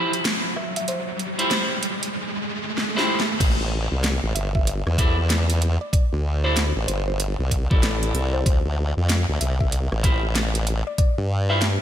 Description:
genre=glitch hop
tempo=95 BPM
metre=4/4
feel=swing 63% on 16ths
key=A minor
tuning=A4 = 442 Hz
part: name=clean electric guitar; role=stabs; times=0.0-11.6 s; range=E4 to D5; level=-27 LUFS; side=equal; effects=vintage 12-bit sampler grit, sidechain pumping, digital delay
part: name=riser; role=sound effects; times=0.0-3.4 s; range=none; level=-28 LUFS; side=right 1 dB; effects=none
part: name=dubstep drum kit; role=drums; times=0.1-11.8 s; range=crash cymbal, hi-hat, rim click, snare drum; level=-26 LUFS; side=equal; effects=none
part: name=woody wave-folded pluck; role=melody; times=0.6-11.7 s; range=C5 to E5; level=-33 LUFS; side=equal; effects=chorus, cassette tape, digital delay
part: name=formant-sweep wobble bass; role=bass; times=3.4-11.8 s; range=G1 to G2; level=-22 LUFS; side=equal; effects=chorus, tube saturation
part: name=electronic kick drum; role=drums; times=3.4-11.1 s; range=none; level=-20 LUFS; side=equal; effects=none
room=light reverb, digital ambience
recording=bright 1980s-style digital production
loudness=-20 LUFS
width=side -10 dB against mid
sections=0.0-3.4 A section; 3.4-11.8 B section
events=build-up 0.0-3.4; riser 0.0-3.4; drum fill 2.8-3.4; drop 3.4-11.8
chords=0.0 Em; 3.4 Am7; 8.5 Dm11

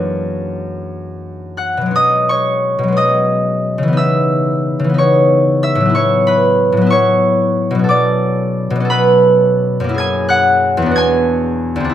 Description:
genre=classical, solo harp piece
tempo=46-64 BPM (dotted quarters)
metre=6/8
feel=rubato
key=B major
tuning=A4 = 438 Hz
part: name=concert harp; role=solo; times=0.0-11.9 s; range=D2 to G#6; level=-12 LUFS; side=equal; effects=none
room=light reverb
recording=none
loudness=-12 LUFS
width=side -11 dB against mid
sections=0.0-1.9 A section; 1.9-11.9 B section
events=none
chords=0.0 F#aug7; 1.9 B69; 4.0 C#m9; 5.9 A69; 7.9 Bm9; 10.0 F#9; 11.0 E9

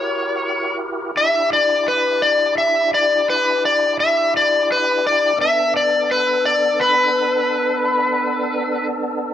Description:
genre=blues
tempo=57 BPM (dotted quarters)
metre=12/8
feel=straight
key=B minor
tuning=A4 = 445 Hz
part: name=overdriven slide guitar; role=melody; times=0.0-8.9 s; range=B4 to E5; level=-16 LUFS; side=left 2 dB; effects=none
part: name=tonewheel organ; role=sustained chords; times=0.0-9.3 s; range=B3 to A#4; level=-24 LUFS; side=right 1 dB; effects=slow rotary speaker, overdrive, chorus vibrato
room=light reverb, digital ambience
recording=rough home demo mix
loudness=-15 LUFS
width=side -10 dB against mid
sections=0.0-9.3 A section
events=electric slide guitar solo 0.0-9.3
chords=0.0 F#7b9; 1.1 Em7; 5.4 Bm7

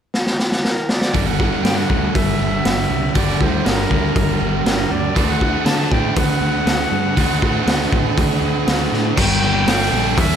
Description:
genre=rock, shoegaze and dream pop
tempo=120 BPM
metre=4/4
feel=straight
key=unclear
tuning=A4 = 440 Hz
part: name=raw garage drum kit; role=drums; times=0.1-10.3 s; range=crash cymbal, hi-hat, kick drum, snare drum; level=-19 LUFS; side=equal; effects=none
part: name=reedy silver concert flute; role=melody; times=0.6-10.4 s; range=Bb4 to A5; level=-25 LUFS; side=equal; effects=digital delay
part: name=biting overdriven guitar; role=riff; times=1.1-10.4 s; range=G2 to A4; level=-21 LUFS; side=right 12 dB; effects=reverse reverb
part: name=thick fuzz guitar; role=riff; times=1.1-10.4 s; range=G2 to A4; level=-23 LUFS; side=left 11 dB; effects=distortion, wide subtle chorus
part: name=fuzz picked electric bass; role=bass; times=1.1-10.4 s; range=G1 to D3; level=-22 LUFS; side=equal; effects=overdrive
part: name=cranked stack guitar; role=riff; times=9.2-10.4 s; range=G2 to G3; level=-23 LUFS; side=left 2 dB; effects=overdrive
room=light reverb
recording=none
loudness=-15 LUFS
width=side -8 dB against mid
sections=0.0-1.1 A section; 1.1-9.2 B section; 9.2-10.4 C section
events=drum fill 0.1-1.1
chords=0.0 N.C.; 1.1 Gm; 5.2 D7; 9.2 Gmadd9

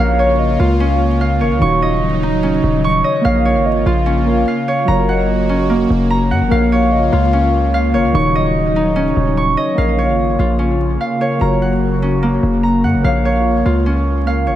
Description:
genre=hip hop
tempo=147 BPM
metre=4/4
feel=half-time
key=Bb minor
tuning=A4 = 440 Hz
part: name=warbly lo-fi synth keys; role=accompaniment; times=0.0-14.6 s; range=Eb3 to F5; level=-20 LUFS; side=equal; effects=chorus
part: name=airy breathy pad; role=sustained chords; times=0.0-14.6 s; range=Db3 to Gb4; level=-20 LUFS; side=equal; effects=chorus
part: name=Celtic harp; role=arpeggios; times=0.0-14.6 s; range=Bb3 to Db6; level=-18 LUFS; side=right 1 dB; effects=digital delay
part: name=hard-hitting 808-style bass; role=bass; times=0.0-14.6 s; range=Eb1 to Gb2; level=-17 LUFS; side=equal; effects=none
part: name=hollow clarinet-like synth lead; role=second line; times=0.2-9.8 s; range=Db5 to F5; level=-23 LUFS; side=left 3 dB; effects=chorus, digital delay
room=light reverb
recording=vinyl crackle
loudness=-12 LUFS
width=side -12 dB against mid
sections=0.0-9.8 A section; 9.8-14.6 B section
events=none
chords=0.0 Bbm; 1.6 Ebm7; 3.2 Bbm; 4.9 Gb; 6.5 Bbm; 8.1 Ebm7; 9.8 Bbm; 11.4 Gb; 13.0 Bbm

